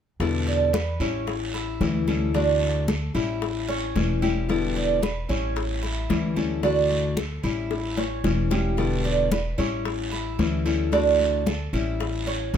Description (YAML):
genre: latin, Cuban son and guajira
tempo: 112 BPM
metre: 4/4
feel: straight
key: unclear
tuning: A4 = 439 Hz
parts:
  - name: nylon-string guitar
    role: accompaniment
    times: 0.2-12.6 s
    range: B2 to F#4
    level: -27 LUFS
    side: left 6 dB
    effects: none
  - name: upright bass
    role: bass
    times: 0.2-12.6 s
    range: E1 to E2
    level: -28 LUFS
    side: equal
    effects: none
  - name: bongos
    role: percussion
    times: 0.2-12.6 s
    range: none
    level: -32 LUFS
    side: left 8 dB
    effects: none
  - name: congas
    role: percussion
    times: 0.2-12.6 s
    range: none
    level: -30 LUFS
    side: equal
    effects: none
  - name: guiro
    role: percussion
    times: 0.2-12.6 s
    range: none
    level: -36 LUFS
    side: right 3 dB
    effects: none
  - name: Cuban tres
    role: arpeggios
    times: 0.5-12.6 s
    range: C#4 to D5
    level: -27 LUFS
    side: right 7 dB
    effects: none
room: light reverb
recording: none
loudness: -22 LUFS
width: side -8 dB against mid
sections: 0.2-12.6 A section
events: drum fill 7.7-8.8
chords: 0.2 Em7; 1.3 A7; 2.3 D; 3.4 A7; 4.5 Em7; 5.6 A7; 6.6 D; 7.7 A7; 8.8 Em7; 9.9 A7; 10.9 D; 12.0 A7